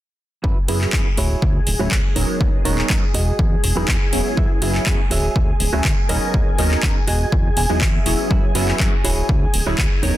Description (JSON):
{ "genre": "filtered disco house", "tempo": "122 BPM", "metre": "4/4", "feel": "straight", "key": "unclear", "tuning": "A4 = 439 Hz", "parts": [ { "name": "string machine, full ensemble", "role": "sustained chords", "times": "0.4-10.2 s", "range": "G#4 to G#5", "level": "-28 LUFS", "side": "left 1 dB", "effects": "ensemble chorus, sidechain pumping, low-pass filter" }, { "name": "clean electric guitar", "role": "riff", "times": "0.4-10.2 s", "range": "D#4 to G#5", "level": "-28 LUFS", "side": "right 4 dB", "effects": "sidechain pumping, low-pass filter" }, { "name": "fat analog bass", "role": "bass", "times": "0.4-10.1 s", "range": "D1 to F#2", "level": "-22 LUFS", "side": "equal", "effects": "tube saturation, sidechain pumping, low-pass filter" }, { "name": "electronic kick drum", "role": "drums", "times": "0.4-9.9 s", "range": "none", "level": "-19 LUFS", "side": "equal", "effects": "none" }, { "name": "funky polysynth comp", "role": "accompaniment", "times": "0.7-10.2 s", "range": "F#3 to A#4", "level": "-25 LUFS", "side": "right 1 dB", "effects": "chorus, phaser, sidechain pumping, low-pass filter" }, { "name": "house drum kit", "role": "drums", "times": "0.7-10.1 s", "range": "handclaps, hi-hat", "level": "-24 LUFS", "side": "equal", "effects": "overdrive, sidechain pumping on hats" } ], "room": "little or no reverb", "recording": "dense, heavily limited modern master", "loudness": "-16 LUFS", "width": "side -14 dB against mid", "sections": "0.4-10.2 A section", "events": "filter sweep 0.4-10.2; clean electric guitar fill 7.3-8.3", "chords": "0.4 F#7sus4; 1.2 Dmaj9#11; 2.2 Bmaj9/D#; 3.1 Emaj9; 4.4 F#7sus4; 5.1 Dmaj9#11; 6.1 Bmaj9/D#; 7.1 Emaj9; 8.3 F#7sus4; 9.0 Dmaj9#11" }